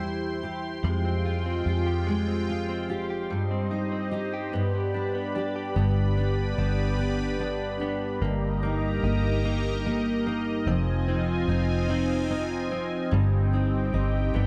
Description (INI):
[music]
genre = six-eight pop ballad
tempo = 49 BPM (dotted quarters)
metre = 6/8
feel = straight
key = C minor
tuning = A4 = 440 Hz
[part]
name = fingerpicked steel-string acoustic guitar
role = accompaniment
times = 0.0-14.5 s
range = G2 to G4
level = -31 LUFS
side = equal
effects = double-tracked
[part]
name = sweeping resonant pad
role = sustained chords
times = 0.0-14.5 s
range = Ab3 to C6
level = -34 LUFS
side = equal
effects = chorus
[part]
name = vintage muted fingered electric bass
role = bass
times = 0.0-14.5 s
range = F1 to F2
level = -30 LUFS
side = equal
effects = none
[part]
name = direct-recorded clean electric guitar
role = arpeggios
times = 0.8-14.5 s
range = G3 to G4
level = -37 LUFS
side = equal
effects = none
[sound]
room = little or no reverb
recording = dry, close 1970s-style studio recording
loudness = -27 LUFS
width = mono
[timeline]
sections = 0.0-5.8 A section; 5.8-14.5 B section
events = none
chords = 0.0 C/E; 0.8 Fmadd9; 3.3 Cm/G; 4.5 G; 8.2 Eb/G; 10.7 Fm7; 13.1 Cm/G